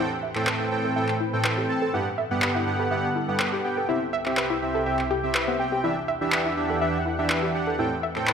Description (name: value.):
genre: progressive house.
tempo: 123 BPM.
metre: 4/4.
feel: straight.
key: unclear.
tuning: A4 = 440 Hz.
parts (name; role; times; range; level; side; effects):
lush unison pad; sustained chords; 0.0-8.3 s; C2 to G5; -31 LUFS; left 1 dB; chorus.
analog pluck; arpeggios; 0.0-8.3 s; B3 to E5; -30 LUFS; left 2 dB; chorus, cassette tape, ping-pong delay.
soft supersaw; stabs; 0.0-8.3 s; G2 to A5; -25 LUFS; right 2 dB; ping-pong delay.
downlifter; sound effects; 0.3-1.9 s; none; barely audible; none; none.
electronic handclaps; drums; 0.4-8.3 s; none; -28 LUFS; equal; none.
room: moderate lush hall reverb, RT60 1.6 s, digital ambience.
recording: none.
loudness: -22 LUFS.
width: side -7 dB against mid.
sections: 0.0-8.3 A section.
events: filter sweep on synth pluck 0.0-8.3.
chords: 0.0 Am7; 1.9 Gmaj7; 3.9 C; 5.8 Em7; 7.8 Am7.